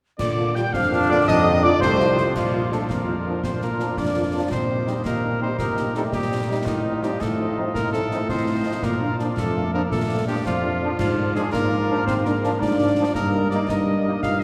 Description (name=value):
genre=military-style march for wind band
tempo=111 BPM (dotted quarters)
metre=6/8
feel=straight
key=Bb major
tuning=A4 = 440 Hz
part: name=clear cornet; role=melody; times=0.2-14.4 s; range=Eb4 to G5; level=-29 LUFS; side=equal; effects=none
part: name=mellow piccolo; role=second line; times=0.2-2.3 s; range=C6 to G6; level=-31 LUFS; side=equal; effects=none
part: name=warm euphonium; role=second line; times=0.2-14.4 s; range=C3 to F4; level=-30 LUFS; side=equal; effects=none
part: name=warm woodwind section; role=second line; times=0.2-14.4 s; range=F4 to G5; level=-33 LUFS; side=equal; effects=none
part: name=mellow tuba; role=bass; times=0.2-14.4 s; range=C2 to Bb2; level=-27 LUFS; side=equal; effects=none
part: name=concert snare drum, clash cymbals and concert bass drum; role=drums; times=0.2-14.4 s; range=none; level=-33 LUFS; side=equal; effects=none
part: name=mellow French horn section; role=accompaniment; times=0.4-14.4 s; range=F3 to F4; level=-33 LUFS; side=equal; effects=none
part: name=clear trombone section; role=sustained chords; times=0.7-14.1 s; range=F3 to Eb4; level=-32 LUFS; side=equal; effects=none
room=wet cathedral reverb, RT60 4.4 s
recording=recorded in a church or concert hall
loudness=-22 LUFS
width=mono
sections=0.2-2.4 A section; 2.4-14.4 B section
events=none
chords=0.2 Bb; 1.3 F7; 2.4 Bb; 4.5 Cm7/Bb; 6.7 F7/A; 8.8 Bb; 11.0 Bb7/Ab; 13.2 Eb/G